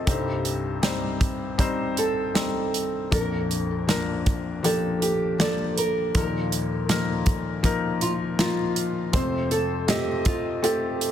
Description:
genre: pop ballad.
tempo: 80 BPM.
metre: 4/4.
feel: straight.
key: Bb major.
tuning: A4 = 440 Hz.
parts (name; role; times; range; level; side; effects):
nylon-string guitar; melody; 0.0-11.1 s; F4 to C5; -28 LUFS; right 2 dB; ping-pong delay.
felt-muted upright piano; accompaniment; 0.0-11.1 s; Bb1 to Eb5; -26 LUFS; left 3 dB; none.
natural country drum kit; drums; 0.1-11.1 s; hi-hat, kick drum, snare drum; -25 LUFS; right 1 dB; none.
room: light reverb, small room ambience.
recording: dense, heavily limited modern master.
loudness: -22 LUFS.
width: side -10 dB against mid.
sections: 0.0-11.1 A section.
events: none.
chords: 0.1 Cm; 3.1 Bb; 6.1 Ebsus2; 9.1 F.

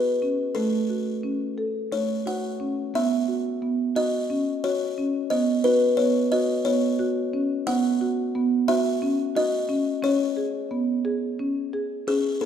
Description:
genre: contemporary instrumental, contemporary.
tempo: 177 BPM (eighths).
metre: 7/8.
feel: straight.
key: B mixolydian.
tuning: A4 = 440 Hz.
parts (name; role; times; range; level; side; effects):
buzzing kalimba; melody; 0.0-12.5 s; G#4 to F#5; -26 LUFS; left 2 dB; none.
marimba with soft mallets; arpeggios; 0.0-12.5 s; A3 to A4; -24 LUFS; right 2 dB; none.
room: wet recital hall reverb, RT60 1.6 s.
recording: none.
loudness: -22 LUFS.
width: side -8 dB against mid.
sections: 0.0-2.9 A section; 2.9-12.4 B section.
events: none.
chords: 0.0 G#m7 (rootless); 0.6 F#m; 2.9 Badd9; 10.0 G#madd11/B.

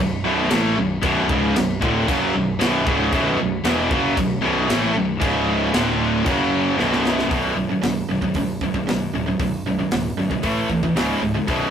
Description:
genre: heavy metal.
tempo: 115 BPM.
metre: 4/4.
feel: straight.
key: B minor.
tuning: A4 = 444 Hz.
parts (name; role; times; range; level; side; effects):
high-gain distorted guitar; riff; 0.0-11.7 s; B1 to A3; -23 LUFS; left 6 dB; distortion.
high-gain distorted guitar; riff; 0.0-7.3 s; B1 to A3; -25 LUFS; left 1 dB; distortion.
tight distorted guitar; riff; 0.0-11.7 s; B1 to A3; -22 LUFS; right 5 dB; distortion.
fuzz fingered electric bass; bass; 0.0-11.7 s; B0 to B1; -29 LUFS; left 1 dB; overdrive.
modern studio drum kit; drums; 0.5-11.6 s; crash cymbal, hi-hat, kick drum, snare drum; -25 LUFS; equal; none.
room: moderate studio reverb, RT60 0.6 s.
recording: rough rehearsal-room recording, warm saturation.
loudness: -18 LUFS.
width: side -8 dB against mid.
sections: 0.0-7.3 A section; 7.3-11.7 B section.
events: drum fill 6.8-7.3.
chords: 0.0 Bm; 5.2 C#5; 5.7 D5; 6.3 F#5; 6.8 B5; 10.4 A5; 11.0 C#5.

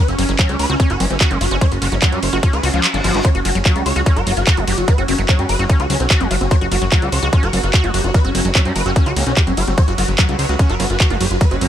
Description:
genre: psychedelic trance.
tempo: 147 BPM.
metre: 4/4.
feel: straight.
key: F# major.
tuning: A4 = 440 Hz.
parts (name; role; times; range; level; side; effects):
swarming rave lead; melody; 0.0-11.7 s; C#4 to C#5; -23 LUFS; equal; chorus, phaser, sidechain pumping, digital delay.
bubbling stepped-filter texture; sustained chords; 0.0-11.7 s; F#3 to B4; -26 LUFS; right 2 dB; chorus, built-in reverb, sidechain pumping.
screaming distorted acid line; riff; 0.0-11.7 s; E#3 to G4; -24 LUFS; moving between left 6 dB and right 6 dB; distortion, chorus, auto-pan, sidechain pumping, digital delay.
fat analog bass; bass; 0.1-11.7 s; F#1 to F#2; -20 LUFS; equal; none.
drum and bass drum kit; drums; 0.1-11.7 s; handclaps, hi-hat, ride cymbal; -22 LUFS; equal; none.
electronic kick drum; drums; 0.4-11.5 s; none; -14 LUFS; equal; none.
vowel-sweep wobble bass; second line; 1.0-11.2 s; F#3 to C#4; -35 LUFS; left 4 dB; none.
reverse cymbal; sound effects; 2.6-3.2 s; none; -27 LUFS; left 1 dB; none.
room: digital ambience.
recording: none.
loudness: -13 LUFS.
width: side -10 dB against mid.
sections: 0.0-11.7 A section.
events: reverse cymbal 2.6-3.2; kick drops out 2.8-3.2.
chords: 0.0 F#5.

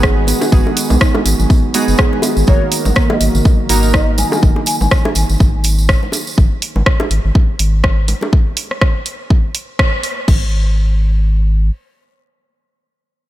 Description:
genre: afro house.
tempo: 123 BPM.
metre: 4/4.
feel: swing 57% on 16ths.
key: unclear.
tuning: A4 = 442 Hz.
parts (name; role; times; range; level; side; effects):
kalimba; arpeggios; 0.0-4.3 s; C#3 to G#4; -21 LUFS; right 1 dB; sidechain pumping, tape echo.
warm analog keys; stabs; 0.0-4.4 s; A#3 to A#4; -20 LUFS; right 3 dB; chorus, sidechain pumping, tape echo.
round analog bass; bass; 0.0-11.7 s; F#1 to B1; -14 LUFS; equal; sidechain pumping.
electronic kick drum; drums; 0.0-10.4 s; none; -12 LUFS; equal; none.
house drum kit; drums; 0.0-10.4 s; crash cymbal, hi-hat, rim click; -20 LUFS; equal; none.
tambourine; percussion; 0.0-6.4 s; none; -24 LUFS; right 3 dB; none.
bongos; percussion; 0.3-8.3 s; none; -23 LUFS; equal; none.
bass bansuri; melody; 2.5-4.9 s; C#5 to G#5; -23 LUFS; left 1 dB; tape echo.
room: light reverb, small room ambience.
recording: none.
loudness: -11 LUFS.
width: side -14 dB against mid.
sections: 0.0-10.3 A section; 10.3-13.3 B section.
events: drop 0.0-10.3; band accent 9.8.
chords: 0.0 G#m7; 2.5 D#m/G#; 10.3 N.C..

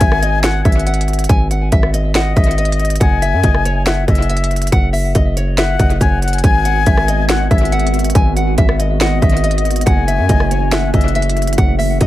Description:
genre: hip hop, trap.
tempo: 140 BPM.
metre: 4/4.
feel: half-time.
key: G# phrygian.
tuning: A4 = 440 Hz.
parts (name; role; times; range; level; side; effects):
nylon-string guitar; melody; 0.0-12.1 s; C#5 to G#5; -21 LUFS; left 1 dB; tape echo.
breathy bright concert flute; second line; 0.0-11.5 s; D#5 to G#5; -21 LUFS; left 5 dB; tape echo.
distorted 808-style bass; bass; 0.0-12.1 s; F#1 to F#2; -16 LUFS; equal; distortion.
trap drum kit; drums; 0.0-12.1 s; hi-hat, kick drum, rim click, snare drum; -15 LUFS; equal; none.
warbly tape-like pad; sustained chords; 6.7-12.1 s; D#3 to F#4; -24 LUFS; right 1 dB; chorus, built-in reverb.
room: light reverb.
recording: echo-heavy mix.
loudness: -12 LUFS.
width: side -14 dB against mid.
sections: 0.0-12.1 A section.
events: none.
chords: 0.0 G#5; 3.0 F#5; 6.4 G#m7; 9.9 F#m7.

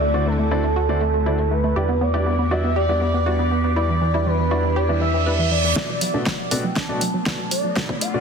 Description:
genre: progressive house.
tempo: 120 BPM.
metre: 4/4.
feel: straight.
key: E minor.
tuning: A4 = 437 Hz.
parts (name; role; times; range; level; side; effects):
expressive synth lead; melody; 0.0-8.2 s; A4 to A5; -24 LUFS; right 2 dB; wide subtle chorus, digital delay.
evolving wavetable pad; sustained chords; 0.0-8.2 s; D3 to G4; -29 LUFS; left 2 dB; ensemble chorus, built-in reverb, phaser, sidechain pumping.
wide unison pluck; arpeggios; 0.0-8.2 s; E3 to B4; -26 LUFS; right 1 dB; sidechain pumping, digital delay.
round analog bass; bass; 0.0-8.2 s; B1 to E2; -22 LUFS; equal; sidechain pumping, high-pass filter.
warm grand piano; stabs; 0.1-8.2 s; B2 to D5; -28 LUFS; left 2 dB; sidechain pumping, low-pass filter, digital delay.
reverse cymbal and riser; sound effects; 5.0-8.2 s; none; -28 LUFS; right 4 dB; none.
deep house drum kit; drums; 5.8-8.1 s; hi-hat, snare drum; -25 LUFS; equal; overdrive, sidechain pumping on hats.
electronic kick drum; drums; 5.8-8.0 s; none; -29 LUFS; equal; overdrive, high-pass filter on kick.
room: light reverb.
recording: dense, heavily limited modern master.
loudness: -18 LUFS.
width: side -6 dB against mid.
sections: 0.0-5.8 A section; 5.8-8.2 B section.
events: reverse cymbal 5.0-5.8; build-up 5.8-8.2; drum fill 5.8-8.2; riser 5.8-8.2; filter sweep on ambient pad 5.8-8.2; filter sweep on analog synth lead 5.8-8.2.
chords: 0.0 D7; 1.8 Em7; 5.8 Bm7.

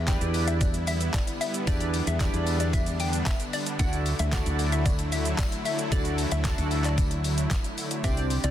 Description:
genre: dance-pop.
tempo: 113 BPM.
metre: 4/4.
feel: straight.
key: unclear.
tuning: A4 = 440 Hz.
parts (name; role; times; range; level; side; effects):
hollow square pluck; melody; 0.0-8.5 s; D5 to G5; -35 LUFS; left 3 dB; chorus, sidechain pumping, tape echo.
supersaw pad; sustained chords; 0.0-8.5 s; D3 to G4; -32 LUFS; equal; sidechain pumping.
woody fretless electric bass; bass; 0.0-8.5 s; C2 to E2; -27 LUFS; equal; sidechain pumping.
chorused polysynth; accompaniment; 0.1-8.3 s; C4 to D5; -33 LUFS; right 1 dB; sidechain pumping.
detuned 8-bit digital drum machine; drums; 0.1-8.5 s; handclaps, hi-hat, kick drum, shaker, snare drum; -28 LUFS; equal; none.
tambourine; percussion; 0.1-8.4 s; none; -44 LUFS; left 5 dB; none.
room: digital ambience.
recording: dense, heavily limited modern master.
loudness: -24 LUFS.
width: side -11 dB against mid.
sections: 0.0-8.5 A section.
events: none.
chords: 0.0 Em7; 3.8 Dadd9.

